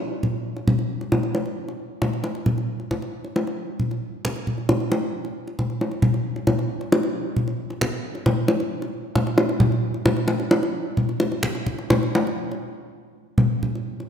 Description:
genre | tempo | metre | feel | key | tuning
gamelan | 134 BPM | 4/4 | straight | none | none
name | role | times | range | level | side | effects
kendang | percussion | 0.2-14.1 s | none | -21 LUFS | equal | none
room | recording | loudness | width
wet concert hall reverb, RT60 1.8 s | none | -21 LUFS | side -8 dB against mid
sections
0.0-13.4 A section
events
none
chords
none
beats
0.23 | 0.67 1.12 1.57 2.01 | 2.46 2.91 3.35 3.80 | 4.25 4.69 5.14 5.58 | 6.03 6.48 6.92 7.37 | 7.82 8.26 8.71 9.16 | 9.60 10.05 10.51 10.97 | 11.44 11.91 12.39 12.88 | 13.38 13.88

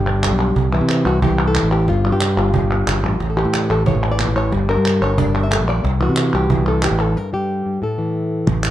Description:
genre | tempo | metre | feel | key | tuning
flamenco | 182 BPM | 4/4 | straight | unclear | A4 = 436 Hz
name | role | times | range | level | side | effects
flamenco guitar | melody | 0.0-8.7 s | G2 to E5 | -19 LUFS | left 2 dB | none
modern bright fingered electric bass | bass | 0.0-8.7 s | G1 to C3 | -19 LUFS | equal | none
palmas hand claps | percussion | 0.1-8.7 s | none | -23 LUFS | right 1 dB | none
cajon | percussion | 0.2-8.6 s | none | -24 LUFS | right 4 dB | none
room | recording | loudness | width
light reverb | dark, warm production | -15 LUFS | side -13 dB against mid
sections
0.0-8.5 A section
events
break 7.2-8.5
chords
0.0 G5; 0.6 C; 1.9 Gm; 3.2 A; 4.5 Gm; 5.8 C; 7.2 N.C.; 7.8 A5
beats
0.23 | 0.56 0.89 1.22 1.55 | 1.88 2.21 2.54 2.87 | 3.21 3.54 3.87 4.20 | 4.52 4.85 5.18 5.51 | 5.84 6.17 6.50 6.83 | 7.16 7.49 7.82 8.15 | 8.47

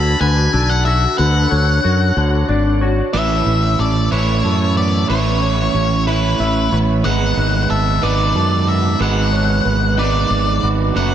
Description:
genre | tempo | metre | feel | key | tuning
rock | 61 BPM (dotted quarters) | 6/8 | straight | unclear | A4 = 439 Hz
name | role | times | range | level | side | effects
octave-fuzz lead guitar | melody | 0.0-11.1 s | B4 to B5 | -20 LUFS | left 2 dB | distortion, tape echo
electric guitar through a small old amp | arpeggios | 0.0-11.1 s | A4 to A5 | -26 LUFS | right 4 dB | harmonic tremolo, tape echo
semi-hollow electric guitar | arpeggios | 0.0-11.1 s | A2 to B4 | -24 LUFS | left 4 dB | ensemble chorus, tape echo
modern bright fingered electric bass | bass | 0.0-11.1 s | F#1 to F#2 | -17 LUFS | equal | none
overdriven electric guitar | riff | 3.1-11.1 s | F#2 to E4 | -19 LUFS | right 7 dB | none
room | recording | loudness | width
moderate church reverb, RT60 2.9 s | dreamy mix soaked in reverb | -14 LUFS | side -10 dB against mid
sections
0.0-3.1 A section; 3.1-11.1 B section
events
none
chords
0.0 D; 3.1 Aadd9; 7.1 G#m7b5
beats
0.21 | 1.19 2.17 | 3.14 4.12 | 5.10 6.08 | 7.05 8.03 | 9.01 9.98 | 10.96

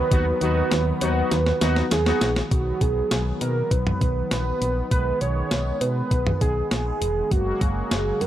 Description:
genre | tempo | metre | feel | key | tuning
synth-pop | 100 BPM | 4/4 | straight | B major | A4 = 445 Hz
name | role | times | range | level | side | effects
warm velvety synth lead | melody | 0.0-8.3 s | F#4 to C#5 | -26 LUFS | right 2 dB | chorus, slapback echo
brassy analog pad | sustained chords | 0.0-8.3 s | C#3 to F#4 | -30 LUFS | equal | chorus
solid FM bass | bass | 0.0-8.3 s | E1 to B2 | -25 LUFS | equal | none
analog synth brass | accompaniment | 0.1-2.3 s | B3 to F#4 | -27 LUFS | left 2 dB | chorus
clean 12-bit digital drum machine | drums | 0.1-8.3 s | cowbell, hi-hat, kick drum, snare drum, toms | -24 LUFS | equal | none
room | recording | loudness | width
light reverb | none | -20 LUFS | side -12 dB against mid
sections
0.0-2.5 A section; 2.5-8.3 B section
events
drum fill 1.3-2.5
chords
0.0 B; 7.3 F#add9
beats
| 0.12 0.71 1.31 1.92 | 2.52 3.12 3.71 4.32 | 4.92 5.51 6.12 6.71 | 7.32 7.92

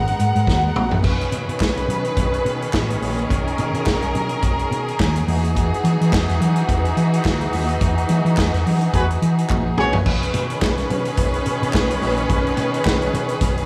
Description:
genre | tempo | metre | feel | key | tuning
disco | 106 BPM | 4/4 | swing 56% on 16ths | unclear | A4 = 445 Hz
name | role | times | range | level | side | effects
rich studio string section | sustained chords | 0.0-13.7 s | D#3 to Gb5 | -25 LUFS | equal | none
hollow-body short-scale fingered electric bass | bass | 0.0-13.6 s | Ab1 to E3 | -24 LUFS | equal | none
vintage drum kit | drums | 0.1-13.7 s | crash cymbal, hi-hat, kick drum, snare drum, toms | -25 LUFS | equal | gated reverb
congas | percussion | 0.2-13.6 s | none | -32 LUFS | equal | none
group handclap | percussion | 1.6-13.0 s | none | -34 LUFS | equal | none
warm horn section | stabs | 8.9-10.0 s | F#4 to C#5 | -24 LUFS | equal | none
room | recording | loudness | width
light reverb, small room reverb | small room ambience | -20 LUFS | mono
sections
0.0-1.0 A section; 1.0-10.1 B section; 10.1-13.7 C section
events
drum fill 0.5-1.0, 9.5-10.1; band accent 7.8-10.1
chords
0.0 Abm9; 1.0 B69; 5.3 Emaj9; 9.8 B69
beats
0.47 | 1.04 1.60 2.17 2.73 | 3.30 3.87 4.43 4.99 | 5.56 6.12 6.69 7.25 | 7.81 8.37 8.94 9.50 | 10.06 10.62 11.18 11.74 | 12.30 12.86 13.41

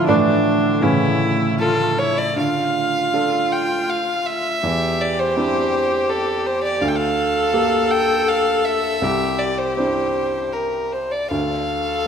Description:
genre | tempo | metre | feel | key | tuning
celtic folk, Celtic slow air | 75-84 BPM | 3/4 | rubato | D minor | A4 = 441 Hz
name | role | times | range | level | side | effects
clear viola | second line | 0.0-12.1 s | D4 to A4 | -22 LUFS | left 2 dB | none
felt-muted upright piano | accompaniment | 0.0-12.1 s | C2 to A4 | -22 LUFS | right 2 dB | none
deep dark ambient pad | sustained chords | 0.0-2.4 s | C#3 to E5 | -27 LUFS | equal | chorus, built-in reverb
clear fiddle | melody | 1.6-12.1 s | A4 to G5 | -21 LUFS | right 1 dB | none
room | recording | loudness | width
moderate scoring stage reverb, RT60 1.9 s | none | -17 LUFS | side -7 dB against mid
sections
0.0-2.4 A section; 2.4-12.1 B section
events
felt piano solo 0.0-2.4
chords
0.1 Asus4; 0.8 A; 2.4 Dm; 4.6 Cadd9/E; 6.8 Gmadd9/D; 9.0 Cadd9; 11.3 Dm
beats
| 0.08 0.82 1.60 | 2.38 3.15 3.90 | 4.64 5.37 6.09 | 6.81 7.53 8.27 | 9.01 9.76 10.53 | 11.30 12.06

